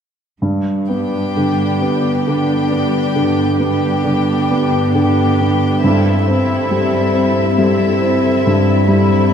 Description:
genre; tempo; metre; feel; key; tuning
classical, romantic movement for piano and orchestra; 45 BPM (dotted quarters); 12/8; rubato; G major; A4 = 440 Hz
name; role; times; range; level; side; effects
warm concert grand piano; melody; 0.4-9.3 s; G2 to C4; -15 LUFS; equal; none
warm studio cello section; bass; 0.4-9.3 s; G2; -22 LUFS; right 1 dB; none
warm chamber violin section; second line; 0.9-9.3 s; G4 to G5; -22 LUFS; left 3 dB; none
dark studio viola section; accompaniment; 0.9-9.3 s; B3 to E4; -21 LUFS; left 1 dB; none
room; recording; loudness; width
wet cathedral reverb, RT60 7.0 s; in a vast, echoing space; -13 LUFS; side -7 dB against mid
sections
0.4-9.3 A section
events
none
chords
0.4 G; 5.8 Am7/G

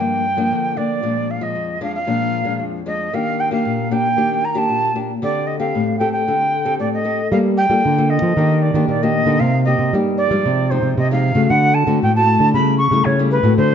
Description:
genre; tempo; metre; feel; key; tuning
samba; 115 BPM; 4/4; straight; G minor; A4 = 439 Hz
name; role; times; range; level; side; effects
jazz flute; melody; 0.0-13.7 s; B4 to C#6; -19 LUFS; right 1 dB; none
nylon-string guitar; accompaniment; 0.0-13.7 s; F2 to A4; -20 LUFS; left 2 dB; none
nylon-string guitar; bass; 7.3-13.7 s; A2 to G3; -17 LUFS; right 1 dB; none
room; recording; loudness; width
moderate large studio reverb, RT60 1.3 s; nothing above 7.6 kHz; -15 LUFS; side -8 dB against mid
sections
0.0-7.3 A section; 7.3-13.7 B section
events
none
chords
0.0 Gm7; 1.0 Bb7; 3.1 Ebmaj7; 5.2 D7sus4; 7.3 Gm9; 8.4 Ebmaj7; 9.4 Cm7; 10.5 Ab6/C; 11.5 D7; 12.5 A7/C#

